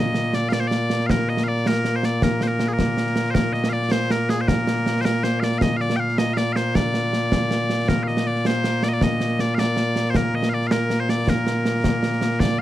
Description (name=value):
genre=scottish traditional, Scottish pipe music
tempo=106 BPM (dotted quarters)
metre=6/8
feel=straight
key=Bb major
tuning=A4 = 440 Hz
part: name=loud bright bagpipes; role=melody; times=0.0-12.6 s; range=Bb2 to G5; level=-21 LUFS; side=left 1 dB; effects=none
part: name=concert snare drum and concert bass drum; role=drums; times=0.1-12.6 s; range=none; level=-23 LUFS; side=right 1 dB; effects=none
room=little or no reverb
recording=dry, close 1970s-style studio recording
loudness=-19 LUFS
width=side -13 dB against mid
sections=0.0-3.4 A section; 3.4-12.4 A section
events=none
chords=none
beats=0.52 | 1.09 1.65 | 2.22 2.79 | 3.35 3.92 | 4.48 5.05 | 5.62 6.18 | 6.75 7.32 | 7.88 8.45 | 9.01 9.58 | 10.14 10.71 | 11.28 11.84 | 12.41